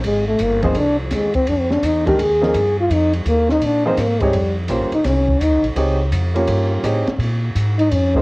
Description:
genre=modal jazz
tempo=168 BPM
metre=4/4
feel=swing 65% on 8ths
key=Bb dorian from 4.3 s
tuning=A4 = 439 Hz
part: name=upright bass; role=bass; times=0.0-8.2 s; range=F1 to Bb2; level=-20 LUFS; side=equal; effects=none
part: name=open jazz drum kit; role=drums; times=0.0-8.2 s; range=hi-hat, kick drum, ride cymbal, snare drum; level=-25 LUFS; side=equal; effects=vintage 12-bit sampler grit, cassette tape
part: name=trombone with bucket mute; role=second line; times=0.1-5.6, 7.8-8.2 s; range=F3 to Ab4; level=-17 LUFS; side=left 1 dB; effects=cassette tape
part: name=warm grand piano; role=accompaniment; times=0.6-8.2 s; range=Eb3 to Db5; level=-20 LUFS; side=right 1 dB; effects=cassette tape
room=light reverb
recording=home recording on cassette, vinyl crackle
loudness=-15 LUFS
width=side -25 dB against mid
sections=0.0-4.3 A section; 4.3-8.2 A section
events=trombone solo 0.0-8.2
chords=0.0 Fm9 (rootless); 1.5 Bbsus4; 4.3 Bbm69; 7.2 Absus2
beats=| 0.05 0.41 0.77 1.12 | 1.48 1.84 2.19 2.55 | 2.91 3.27 3.62 3.98 | 4.34 4.70 5.05 5.41 | 5.77 6.13 6.48 6.84 | 7.20 7.56 7.91

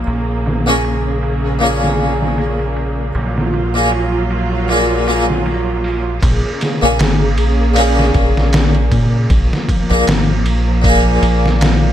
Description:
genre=trip hop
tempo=78 BPM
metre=4/4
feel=swing 56% on 16ths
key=Bb minor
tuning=A4 = 440 Hz
part: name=harpsichord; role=accompaniment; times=0.0-11.9 s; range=Bb2 to Ab4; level=-18 LUFS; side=left 1 dB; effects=tremolo, tape echo
part: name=warm studio string section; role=sustained chords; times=0.0-11.9 s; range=Db3 to Ab4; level=-20 LUFS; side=right 1 dB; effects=vintage 12-bit sampler grit
part: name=deep dub fingered electric bass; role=bass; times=0.0-11.9 s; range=Ab1 to Bb2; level=-16 LUFS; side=equal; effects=none
part: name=trip hop sampler-style drum kit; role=drums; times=0.1-11.8 s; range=hi-hat, kick drum, ride cymbal, snare drum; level=-19 LUFS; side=equal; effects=overdrive, low-pass filter on cymbals, studio reverb, low-pass filter on snare, low-pass filter on hats, low-pass filter on kick
room=light reverb, digital ambience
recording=none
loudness=-12 LUFS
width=side -11 dB against mid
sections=0.0-6.2 A section; 6.2-11.9 B section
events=none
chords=0.1 Bbm7; 3.1 Gbmaj7/Bb; 6.2 Bbm7; 9.3 Fmadd11/Ab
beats=| 0.07 0.84 1.61 2.38 | 3.15 3.92 4.69 5.46 | 6.23 7.00 7.76 8.53 | 9.30 10.07 10.84 11.61

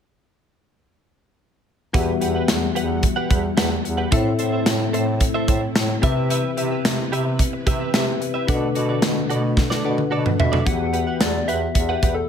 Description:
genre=1980s-style pop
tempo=110 BPM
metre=4/4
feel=straight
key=E minor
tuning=A4 = 440 Hz
part: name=bell-like tine electric piano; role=accompaniment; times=1.9-12.3 s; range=A2 to F#5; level=-25 LUFS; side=left 6 dB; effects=none
part: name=string machine, cellos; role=sustained chords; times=1.9-10.6 s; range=C3 to F#5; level=-28 LUFS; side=equal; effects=ensemble chorus
part: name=direct-recorded clean electric guitar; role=riff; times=1.9-12.2 s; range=F#4 to F#5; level=-28 LUFS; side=right 4 dB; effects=analog chorus, ping-pong delay
part: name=warm bass clarinet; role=bass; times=1.9-12.2 s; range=E2 to C3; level=-26 LUFS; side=right 1 dB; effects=none
part: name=modern studio drum kit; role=drums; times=1.9-12.2 s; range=hi-hat, kick drum, snare drum, toms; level=-21 LUFS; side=right 1 dB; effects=gated reverb
part: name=soft struck synth lead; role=melody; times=10.4-12.3 s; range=A4 to F#5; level=-25 LUFS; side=left 1 dB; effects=chorus, ping-pong delay
room=light reverb, small room ambience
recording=none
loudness=-18 LUFS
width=side -8 dB against mid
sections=1.9-10.7 A section; 10.7-12.3 B section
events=drum fill 9.6-10.7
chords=1.9 Emadd9; 4.1 Am; 6.0 Cmaj7; 8.5 Bm7; 10.7 Emadd9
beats=| 1.94 2.48 3.03 3.58 | 4.12 4.67 5.21 5.76 | 6.30 6.85 7.39 7.94 | 8.48 9.03 9.58 10.12 | 10.67 11.21 11.76

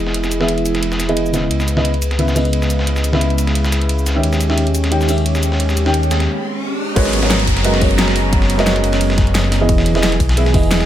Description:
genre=liquid drum and bass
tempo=176 BPM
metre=4/4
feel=swing 54% on 16ths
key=G# minor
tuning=A4 = 441 Hz
part: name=felt-muted upright piano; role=accompaniment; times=0.0-10.9 s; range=C#3 to G5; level=-19 LUFS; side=right 1 dB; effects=tape echo
part: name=warm analog pad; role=sustained chords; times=0.0-10.9 s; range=E3 to A#5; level=-22 LUFS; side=right 2 dB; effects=wide subtle chorus
part: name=dark detuned saw bass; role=bass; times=0.0-10.9 s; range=E1 to D#2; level=-18 LUFS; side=equal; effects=none
part: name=breakbeat sampler-style drum kit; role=drums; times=0.1-10.9 s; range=hi-hat, ride cymbal, snare drum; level=-24 LUFS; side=equal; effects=high-pass filter on cymbals, low-pass filter on cymbals, high-pass filter on snare, low-pass filter on snare, high-pass filter on hats, low-pass filter on hats
part: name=pop drum kit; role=drums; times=0.1-10.9 s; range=crash cymbal, hi-hat, shaker, snare drum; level=-23 LUFS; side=equal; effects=none
part: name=riser and downlifter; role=sound effects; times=5.6-9.7 s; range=none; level=-25 LUFS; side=left 1 dB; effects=none
part: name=electronic kick drum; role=drums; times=7.0-10.6 s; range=none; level=-17 LUFS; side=equal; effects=none
room=light reverb, digital ambience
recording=none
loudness=-13 LUFS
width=side -11 dB against mid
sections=0.0-7.0 A section; 7.0-10.9 B section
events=filter sweep on analog synth pad 0.0-7.0; riser 5.6-7.0; break 6.3-7.0; drop 7.0-10.9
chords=0.0 Emaj7; 1.5 C#m9; 4.2 D#7b9; 7.0 G#m11; 9.7 Emaj7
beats=| 0.14 0.48 0.83 1.17 | 1.51 1.85 2.19 2.53 | 2.87 3.21 3.55 3.89 | 4.24 4.58 4.92 5.26 | 5.60 5.94 6.28 6.62 | 6.96 7.30 7.64 7.99 | 8.33 8.67 9.01 9.35 | 9.69 10.03 10.37 10.71

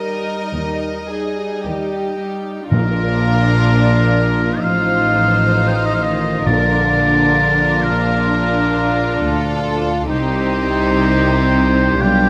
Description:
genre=classical, slow romantic movement for symphony orchestra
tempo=53-68 BPM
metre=4/4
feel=rubato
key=Bb major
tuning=A4 = 440 Hz
part: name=rich studio violin section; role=melody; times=0.0-12.3 s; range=G4 to Eb5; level=-29 LUFS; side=equal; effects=none
part: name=warm studio violin section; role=second line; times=0.0-12.3 s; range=Eb4 to Bb4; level=-26 LUFS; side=equal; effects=none
part: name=warm studio viola section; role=accompaniment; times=0.0-12.3 s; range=G3 to Eb4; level=-26 LUFS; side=equal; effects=none
part: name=warm studio cello section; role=bass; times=0.0-12.3 s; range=Bb2 to G3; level=-24 LUFS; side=equal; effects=none
part: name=warm studio double bass section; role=bass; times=0.0-12.3 s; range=A1 to Eb2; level=-24 LUFS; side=equal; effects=none
part: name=clear oboe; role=second line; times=2.7-12.3 s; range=Bb4 to G5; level=-21 LUFS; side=equal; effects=none
part: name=mellow tuba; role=bass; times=2.7-12.3 s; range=A1 to D2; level=-24 LUFS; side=equal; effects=none
part: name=timpani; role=percussion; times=2.7-7.8 s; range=Bb2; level=-23 LUFS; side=equal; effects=none
room=light reverb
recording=close, detailed microphones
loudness=-16 LUFS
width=mono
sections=0.0-2.7 A section; 2.7-12.3 B section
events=none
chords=0.0 Eb; 2.7 Bb; 4.6 F7/A; 6.5 Bb; 10.1 Cm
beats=0.55 1.66 | 2.71 3.62 4.63 5.57 | 6.47 7.37 8.31 9.23 | 10.12 11.01 12.01

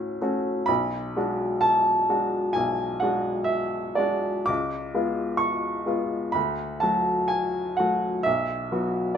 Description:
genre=classical, romantic character piece for solo piano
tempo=64 BPM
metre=4/4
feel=rubato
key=unclear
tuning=A4 = 435 Hz
part: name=clear baby grand piano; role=solo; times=0.0-9.2 s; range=B1 to D6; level=-23 LUFS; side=equal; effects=none
room=moderate large studio reverb, RT60 1.3 s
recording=minimal, uncompressed stereo recording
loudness=-23 LUFS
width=side -8 dB against mid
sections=0.0-9.2 A section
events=none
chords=0.0 Dmaj7; 0.7 G#m7b5/B; 4.5 C#7b9; 6.4 D; 8.3 B5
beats=| 0.68 1.63 2.56 3.48 | 4.49 5.41 6.35 7.31 | 8.26

